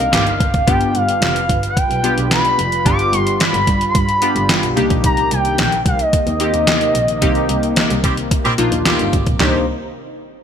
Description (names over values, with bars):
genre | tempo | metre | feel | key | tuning
early-eighties boogie funk | 110 BPM | 4/4 | straight | C minor | A4 = 440 Hz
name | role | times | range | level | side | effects
gliding portamento lead | melody | 0.0-9.7 s | C5 to D6 | -18 LUFS | equal | chorus, digital delay
funky polysynth comp | accompaniment | 0.0-9.7 s | Bb3 to Bb4 | -21 LUFS | left 2 dB | chorus
clear double bass | bass | 0.0-9.7 s | F1 to C3 | -21 LUFS | equal | none
clear horn section | second line | 0.1-0.5, 8.0-9.6 s | Eb3 to G4 | -23 LUFS | right 2 dB | none
detuned 8-bit digital drum machine | drums | 0.1-9.5 s | handclaps, hi-hat, kick drum, snare drum, toms | -18 LUFS | equal | gated reverb
warm analog pad | sustained chords | 0.7-9.7 s | C3 to B4 | -26 LUFS | equal | chorus
room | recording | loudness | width
light reverb, digital ambience | bright 1980s-style digital production, faint mains hum | -13 LUFS | side -8 dB against mid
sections
0.0-9.4 A section; 9.4-10.4 B section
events
band accent 0.0-0.7, 7.2-9.4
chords
0.0 Cm7; 0.7 G7; 4.8 Cm7